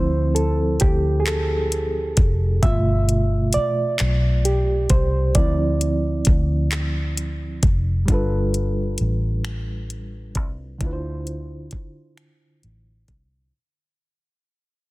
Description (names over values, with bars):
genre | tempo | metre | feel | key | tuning
slow six-eight R&B | 44 BPM (dotted quarters) | 6/8 | straight | D dorian | A4 = 440 Hz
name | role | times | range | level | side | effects
reed electric piano | accompaniment | 0.0-13.6 s | B2 to E5 | -24 LUFS | right 2 dB | harmonic tremolo
vintage muted fingered electric bass | bass | 0.0-13.5 s | F1 to D2 | -22 LUFS | equal | none
smooth R&B drum kit | drums | 0.4-13.3 s | finger snaps, handclaps, hi-hat, kick drum | -21 LUFS | equal | none
room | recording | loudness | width
little or no reverb | dense, heavily limited modern master | -18 LUFS | side -20 dB against mid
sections
0.0-8.1 A section; 8.1-13.5 B section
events
reed electric piano solo 0.0-8.1; fade-out 8.1-13.5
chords
0.0 Dm9; 2.6 G9; 5.4 Dm9; 8.1 G9; 10.8 Dm9